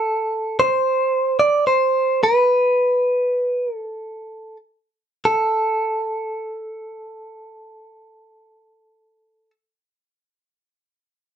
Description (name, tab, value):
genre	pop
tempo	46-58 BPM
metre	4/4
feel	straight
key	A minor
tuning	A4 = 440 Hz
part	direct-recorded clean electric guitar	melody	0.0-9.5 s	A4 to D5	-18 LUFS	right 1 dB	none
room	moderate studio ambience, RT60 0.5 s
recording	band playing live in one room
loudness	-17 LUFS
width	side -8 dB against mid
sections	0.0-5.2 A section; 5.2-10.4 B section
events	slowing down 0.0-5.2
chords	none